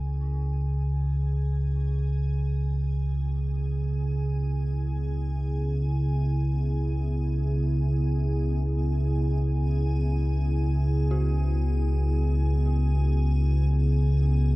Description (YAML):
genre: dark ambient drone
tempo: free time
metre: none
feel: none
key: C# minor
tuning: A4 = 440 Hz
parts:
  - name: dark analog pad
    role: sustained chords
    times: 0.0-14.6 s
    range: C#3 to G#4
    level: -34 LUFS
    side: equal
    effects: chorus
  - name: dark detuned synth bell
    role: arpeggios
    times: 0.0-14.6 s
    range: C#4 to F#4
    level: -43 LUFS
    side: left 2 dB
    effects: chorus, phaser, diffuse ambient delay
  - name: deep rumbling drone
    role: drone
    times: 0.0-14.6 s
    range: C#2 to C#3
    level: -23 LUFS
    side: equal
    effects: built-in reverb
  - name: icy glass pad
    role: texture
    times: 0.0-14.6 s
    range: G#4 to B5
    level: -39 LUFS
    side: right 2 dB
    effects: chorus, built-in reverb
room: wet cathedral reverb, RT60 7.2 s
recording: worn, warbling old tape, cassette tape, warbly pitch drift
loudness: -23 LUFS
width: side -19 dB against mid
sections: 0.0-14.6 A section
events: fade-in on analog synth pad 0.0-14.6; fade-in on ambient pad 0.0-14.6; fade-in on synth bell 0.0-14.6; filter sweep on synth drone 0.0-14.6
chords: 0.0 C#m